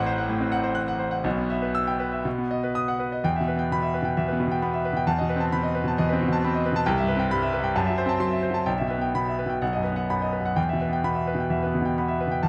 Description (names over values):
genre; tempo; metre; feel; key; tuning
classical, virtuoso piano study; 119-136 BPM; 4/4; rubato; E minor; A4 = 440 Hz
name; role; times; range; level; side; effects
bright concert grand piano; solo; 0.0-12.5 s; A1 to F#6; -25 LUFS; equal; none
room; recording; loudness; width
moderate concert hall reverb, RT60 2.3 s; close, detailed microphones; -25 LUFS; mono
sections
0.0-3.2 A section; 3.2-12.5 B section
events
none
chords
0.0 F#dim/A; 1.2 Em/B; 2.3 B; 3.2 Em; 5.1 B7b9/E; 6.9 Cmaj7; 7.7 F#m7b5; 8.7 Em/B; 9.6 B; 10.6 Em